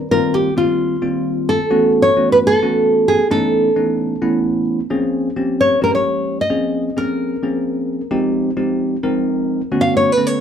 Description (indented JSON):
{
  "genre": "jazz",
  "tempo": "262 BPM (eighths)",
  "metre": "7/8",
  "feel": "straight",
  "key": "unclear",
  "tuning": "A4 = 438 Hz",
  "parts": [
    { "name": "nylon-string guitar", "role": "melody", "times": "0.0-10.4 s", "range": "F4 to F5", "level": "-16 LUFS", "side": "equal", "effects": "none" },
    { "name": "bell-like tine electric piano", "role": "accompaniment", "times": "0.1-10.4 s", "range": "D3 to Bb4", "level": "-18 LUFS", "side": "equal", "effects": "none" }
  ],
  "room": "wet small room reverb, RT60 0.5 s",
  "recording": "band playing live in one room",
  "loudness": "-14 LUFS",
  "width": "side -8 dB against mid",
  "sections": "0.0-4.9 A section; 4.9-10.4 B section",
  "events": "nylon-string guitar solo 4.9-10.4",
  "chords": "0.0 F9sus4; 1.7 B9sus4; 4.9 Bbm9; 8.1 Fm9; 9.7 Bm9"
}